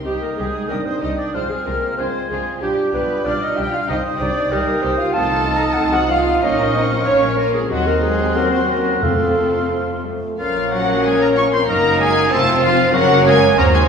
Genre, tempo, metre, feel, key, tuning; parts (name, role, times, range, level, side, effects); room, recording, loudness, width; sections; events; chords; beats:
quick classical-period movement for symphony orchestra; 94 BPM; 2/4; rubato; C minor, Bb minor from 5.1 s; A4 = 440 Hz
muted chamber violin section; melody; 0.0-13.8 s; Gb4 to Db6; -25 LUFS; left 2 dB
muted chamber violin section; second line; 0.0-13.9 s; Bb3 to Bb4; -26 LUFS; left 2 dB
silver concert flute; second line; 0.0-13.9 s; F5 to F6; -27 LUFS; equal
muted chamber viola section; accompaniment; 0.0-13.9 s; Eb3 to Db4; -27 LUFS; right 1 dB
dark clarinet; second line; 0.1-13.9 s; Gb4 to Bb5; -22 LUFS; equal
warm oboe; second line; 0.1-13.8 s; F4 to Ab5; -24 LUFS; right 1 dB
dark bassoon; accompaniment; 0.1-13.9 s; Bb3 to G4; -24 LUFS; right 3 dB
mellow French horn section; sustained chords; 0.1-13.9 s; Db3 to F4; -26 LUFS; equal
muted chamber cello section; bass; 0.1-13.8 s; F3 to A4; -27 LUFS; right 1 dB
muted studio double bass section; bass; 0.1-13.9 s; F1 to F2; -25 LUFS; equal
timpani; percussion; 9.0-10.0 s; F2; -25 LUFS; left 1 dB
dark trumpet section; stabs; 10.4-13.9 s; Bb4 to C5; -22 LUFS; left 4 dB
wet recital hall reverb, RT60 1.6 s; recorded in a church or concert hall, small room ambience; -15 LUFS; side -6 dB against mid
0.1-10.4 A section; 10.4-13.9 B section
0.1 Cm; 1.3 Dm7b5/C; 2.6 G7/B; 3.9 Cm; 5.1 F7/C; 6.4 Bbm; 7.7 Cdim/Eb; 9.0 F; 10.4 Bbm; 11.7 Ebm/Gb; 12.3 F; 12.9 Gb
| 0.06 0.70 | 1.34 1.99 | 2.62 3.26 | 3.89 4.52 | 5.14 5.78 | 6.42 7.07 | 7.71 8.36 | 9.03 9.71 | 10.39 11.04 | 11.69 12.31 | 12.94 13.58